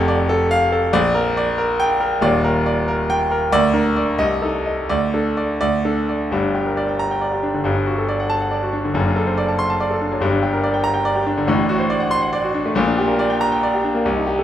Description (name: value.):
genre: classical, virtuoso piano study.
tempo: 82-97 BPM (dotted quarters).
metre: 6/8.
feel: rubato.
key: G minor.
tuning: A4 = 441 Hz.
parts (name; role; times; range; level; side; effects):
clear concert grand piano; solo; 0.0-14.4 s; Eb1 to C6; -16 LUFS; equal; none.
room: wet recital hall reverb, RT60 1.8 s.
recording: none.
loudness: -16 LUFS.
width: side -11 dB against mid.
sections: 0.0-6.3 A section; 6.3-14.4 B section.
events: none.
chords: 0.0 Dm/F; 0.9 Gm/Bb; 2.2 Ebmaj7; 3.5 Bb/D; 4.2 Adim/C; 4.9 D5; 6.3 Gm; 7.7 D/G; 9.0 D7/F#; 10.2 Gm; 11.5 D7/A; 12.8 Gm/Bb.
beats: 0.30 | 0.94 1.59 | 2.22 2.88 | 3.52 4.19 | 4.89 5.61 | 6.32 7.00 | 7.66 8.31 | 8.96 9.60 | 10.22 10.85 | 11.49 12.12 | 12.77 13.41 | 14.05.